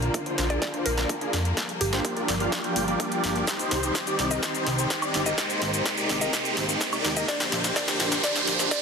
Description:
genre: EDM, festival progressive house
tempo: 126 BPM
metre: 4/4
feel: straight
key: C minor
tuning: A4 = 440 Hz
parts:
  - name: dark symphonic string section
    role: sustained chords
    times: 0.0-8.8 s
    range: C3 to C4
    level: -33 LUFS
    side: left 2 dB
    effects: sidechain pumping
  - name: big supersaw lead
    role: riff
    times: 0.0-8.8 s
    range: Bb3 to G5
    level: -28 LUFS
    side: equal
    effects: phaser, sidechain pumping, low-pass filter, digital delay
  - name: fat analog bass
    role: bass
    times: 0.0-8.7 s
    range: G1 to F2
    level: -31 LUFS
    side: equal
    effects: sidechain pumping
  - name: big-room dance drum kit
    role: drums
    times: 0.0-8.8 s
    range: cabasa, hi-hat, snare drum, woodblock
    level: -28 LUFS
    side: equal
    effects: high-pass filter on snare, high-pass filter on hats, high-pass filter on perc
  - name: riser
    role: sound effects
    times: 0.0-8.8 s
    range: none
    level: -31 LUFS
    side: right 2 dB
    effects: none
  - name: electronic kick drum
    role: drums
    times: 0.1-8.8 s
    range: none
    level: -33 LUFS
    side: equal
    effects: high-pass filter on kick
  - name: mallet-like synth pluck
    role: melody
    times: 0.5-8.8 s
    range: G4 to Eb5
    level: -34 LUFS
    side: left 1 dB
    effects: chorus, digital delay
room: moderate huge ambient reverb, RT60 5.1 s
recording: dense, heavily limited modern master, high-pass filter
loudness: -23 LUFS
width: side -5 dB against mid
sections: 0.0-8.8 A section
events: build-up 0.0-8.8; drum fill 0.0-8.8; riser 0.0-8.8; filter sweep on supersaw synth 0.0-8.8; filter sweep 0.0-8.8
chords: 0.0 Bb; 1.6 Gm7; 3.5 Cm; 5.4 Abadd9; 7.3 Bb

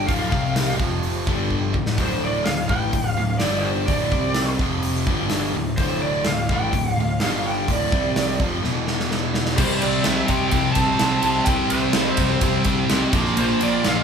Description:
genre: hard rock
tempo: 126 BPM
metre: 4/4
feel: straight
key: unclear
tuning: A4 = 440 Hz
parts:
  - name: lead guitar through a small cranked amp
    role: melody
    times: 0.0-14.0 s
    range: C5 to A5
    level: -25 LUFS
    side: right 1 dB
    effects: overdrive
  - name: sludgy distorted guitar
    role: riff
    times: 0.0-14.0 s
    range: D2 to C4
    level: -25 LUFS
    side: left 6 dB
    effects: overdrive
  - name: tight distorted guitar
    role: riff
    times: 0.0-14.0 s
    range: D2 to C4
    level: -26 LUFS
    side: right 6 dB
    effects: distortion
  - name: fuzz picked electric bass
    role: bass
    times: 0.0-14.0 s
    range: D1 to C2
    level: -28 LUFS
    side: equal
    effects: overdrive
  - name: big rock drum kit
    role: drums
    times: 0.1-14.0 s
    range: crash cymbal, hi-hat, kick drum, ride cymbal, snare drum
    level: -24 LUFS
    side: right 1 dB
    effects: none
  - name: heavy high-gain guitar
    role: riff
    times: 9.6-14.0 s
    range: Bb2 to C4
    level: -24 LUFS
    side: equal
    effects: distortion
room: wet large studio reverb, RT60 0.8 s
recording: band playing live in one room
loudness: -18 LUFS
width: side -6 dB against mid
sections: 0.0-9.6 A section; 9.6-14.0 B section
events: drum fill 1.5-2.0, 8.6-9.6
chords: 0.1 Dm; 0.3 C5; 0.8 F5; 1.3 G5; 1.8 D5; 3.4 G5; 3.9 D5; 4.1 C5; 4.6 F5; 5.1 G5; 5.6 D5; 7.2 G5; 7.7 D5; 7.9 C5; 8.4 F5; 8.6 E5; 9.6 C5; 13.1 Bb5

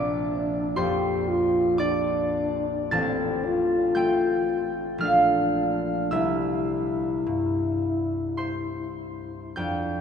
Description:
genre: classical, romantic duo for French horn and harp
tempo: 48-60 BPM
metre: 3/4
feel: rubato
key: unclear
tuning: A4 = 440 Hz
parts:
  - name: mellow French horn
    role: melody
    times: 0.0-10.0 s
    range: C4 to G4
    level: -26 LUFS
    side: left 1 dB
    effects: none
  - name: concert harp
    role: accompaniment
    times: 0.0-10.0 s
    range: A1 to A6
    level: -26 LUFS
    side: equal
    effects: none
room: wet cathedral reverb, RT60 6.1 s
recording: recorded in a church or concert hall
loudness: -22 LUFS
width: side -7 dB against mid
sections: 0.0-10.0 A section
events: none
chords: 0.0 Bb; 2.9 F/A; 5.0 Bbmaj7; 6.1 C

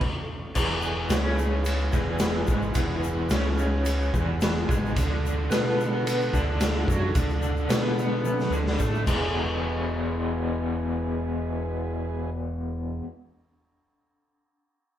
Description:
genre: psychedelic rock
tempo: 109 BPM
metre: 4/4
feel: straight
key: E mixolydian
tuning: A4 = 440 Hz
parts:
  - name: raw garage drum kit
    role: drums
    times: 0.0-9.2 s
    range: crash cymbal, kick drum, ride cymbal, snare drum, toms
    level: -26 LUFS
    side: equal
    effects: none
  - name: combo organ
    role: sustained chords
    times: 0.6-12.3 s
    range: D3 to A4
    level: -35 LUFS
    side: right 4 dB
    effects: none
  - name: raw garage guitar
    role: riff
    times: 0.6-13.0 s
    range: E2 to B4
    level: -29 LUFS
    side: left 1 dB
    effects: overdrive, tremolo
  - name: fingered electric bass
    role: bass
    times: 0.6-13.0 s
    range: E1 to B2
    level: -29 LUFS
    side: equal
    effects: none
  - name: tube shaker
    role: percussion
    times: 0.6-9.6 s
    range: none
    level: -45 LUFS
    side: left 8 dB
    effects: none
room: moderate large studio reverb, RT60 1.0 s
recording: band playing live in one room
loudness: -23 LUFS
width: side -11 dB against mid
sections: 0.6-9.3 A section; 9.3-11.5 B section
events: stop 0.0-0.6; drum fill 8.2-9.3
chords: 0.0 N.C.; 0.6 E; 5.0 D5; 9.1 E

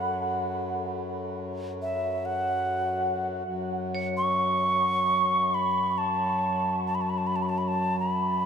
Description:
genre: world meditative, free-time meditation music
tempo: free time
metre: none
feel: none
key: F# minor pentatonic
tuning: A4 = 439 Hz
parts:
  - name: alto ocarina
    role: melody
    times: 0.0-8.5 s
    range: E5 to C#6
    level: -26 LUFS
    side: right 1 dB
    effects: ping-pong delay
  - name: pedal harmonium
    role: drone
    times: 0.0-8.5 s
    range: F#2 to F#3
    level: -31 LUFS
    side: left 1 dB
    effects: none
  - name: vibraphone with hard mallets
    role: texture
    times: 0.0-8.5 s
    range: A4 to C#5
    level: -40 LUFS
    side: left 2 dB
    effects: stereo widening
room: wet huge ambient reverb, RT60 8.6 s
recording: none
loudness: -25 LUFS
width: side -7 dB against mid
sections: 0.0-3.4 A section; 3.4-8.5 A section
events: none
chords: none

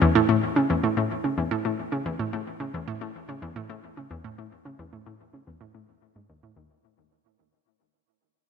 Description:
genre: ambient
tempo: 110 BPM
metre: 4/4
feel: straight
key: unclear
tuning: A4 = 439 Hz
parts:
  - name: analog pluck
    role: solo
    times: 0.0-6.7 s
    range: D#2 to C#3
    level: -24 LUFS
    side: equal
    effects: chorus, ping-pong delay
room: moderate plate reverb, RT60 2.8 s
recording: cassette tape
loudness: -23 LUFS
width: side -6 dB against mid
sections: 0.0-6.8 A section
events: fade-out 0.0-6.8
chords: none

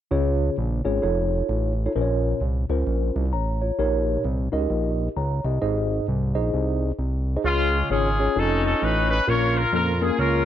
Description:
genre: uptempo gospel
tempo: 131 BPM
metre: 4/4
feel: swing 62% on 8ths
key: Db major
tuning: A4 = 440 Hz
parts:
  - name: mellow tine electric piano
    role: accompaniment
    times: 0.1-10.4 s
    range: Ab2 to Bb5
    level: -25 LUFS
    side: equal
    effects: medium stereo tremolo
  - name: fat analog bass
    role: bass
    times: 0.1-10.4 s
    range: F1 to F2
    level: -24 LUFS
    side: equal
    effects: none
  - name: warm horn section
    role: melody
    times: 7.5-10.4 s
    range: Ab3 to Db5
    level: -22 LUFS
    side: left 1 dB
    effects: none
room: light reverb, studio reverb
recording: dark, warm production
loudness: -21 LUFS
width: side -11 dB against mid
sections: 0.1-7.4 A section; 7.4-10.4 B section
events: none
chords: 0.1 Db; 1.0 Faug7; 2.0 Bbm; 3.8 Eb7/Bb; 5.6 Ab; 7.4 Db; 8.4 Faug7; 9.3 Bbm

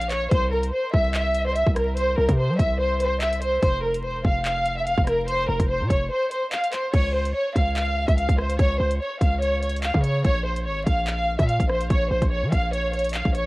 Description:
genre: hip hop, drill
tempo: 145 BPM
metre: 4/4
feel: half-time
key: unclear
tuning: A4 = 440 Hz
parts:
  - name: warm studio violin section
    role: melody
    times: 0.0-13.5 s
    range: Bb4 to F5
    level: -24 LUFS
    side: equal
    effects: low-pass filter, cassette tape, analog delay
  - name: hard-hitting 808-style bass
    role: bass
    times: 0.0-13.5 s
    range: E1 to G3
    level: -25 LUFS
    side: equal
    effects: none
  - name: drill drum kit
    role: drums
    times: 0.0-13.4 s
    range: crash cymbal, handclaps, hi-hat, kick drum, rim click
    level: -23 LUFS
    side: equal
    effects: cassette tape
room: little or no reverb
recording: home recording on cassette, vinyl crackle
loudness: -20 LUFS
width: side -21 dB against mid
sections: 0.0-6.9 A section; 6.9-13.5 B section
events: break 6.1-6.9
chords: 0.3 C5; 3.6 F5; 6.9 Db; 10.2 Bbm

